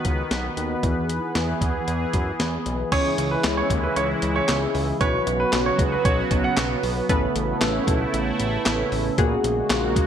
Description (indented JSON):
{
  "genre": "synth-pop",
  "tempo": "115 BPM",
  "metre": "4/4",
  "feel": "straight",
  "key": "C# minor",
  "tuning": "A4 = 439 Hz",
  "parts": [
    { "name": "sweeping resonant pad", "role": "sustained chords", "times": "0.0-10.1 s", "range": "C#3 to B4", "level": "-26 LUFS", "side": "right 1 dB", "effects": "chorus" },
    { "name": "boom bap sampler-style drum kit", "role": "drums", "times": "0.0-10.1 s", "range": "crash cymbal, handclaps, hi-hat, kick drum, snare drum", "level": "-25 LUFS", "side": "equal", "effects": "gated reverb" },
    { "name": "fat analog bass", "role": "bass", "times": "0.1-10.1 s", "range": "A1 to F#2", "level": "-28 LUFS", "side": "equal", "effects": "none" },
    { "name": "clear concert grand piano", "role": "second line", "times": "2.9-6.5 s", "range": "B4 to F#5", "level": "-25 LUFS", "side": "right 2 dB", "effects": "digital delay" },
    { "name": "funky polysynth comp", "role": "accompaniment", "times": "2.9-10.1 s", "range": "A#3 to B4", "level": "-26 LUFS", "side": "equal", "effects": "chorus" }
  ],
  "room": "moderate plate reverb, RT60 1.4 s",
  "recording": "bright 1980s-style digital production",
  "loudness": "-20 LUFS",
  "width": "side -9 dB against mid",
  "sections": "0.0-2.9 A section; 2.9-10.1 B section",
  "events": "none",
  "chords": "0.0 B; 0.8 E; 2.9 C#m; 5.0 Bsus2; 7.1 Aadd9; 9.2 F#add9/A#"
}